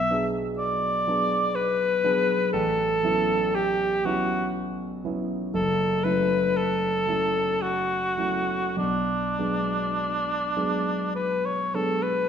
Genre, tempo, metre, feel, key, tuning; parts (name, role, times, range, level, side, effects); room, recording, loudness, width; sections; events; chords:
classical, impressionist duo for cor anglais and grand piano; 49-63 BPM; 3/4; rubato; B minor; A4 = 442 Hz
warm cor anglais; melody; 0.0-12.3 s; D4 to E5; -24 LUFS; equal
dark concert grand piano; accompaniment; 0.0-12.3 s; F#1 to G#4; -28 LUFS; equal
wet scoring stage reverb, RT60 1.5 s; minimal, uncompressed stereo recording; -23 LUFS; side -8 dB against mid
0.0-12.3 A section
0.0 Bm6; 2.5 A69; 5.5 F#m7; 8.8 Bm6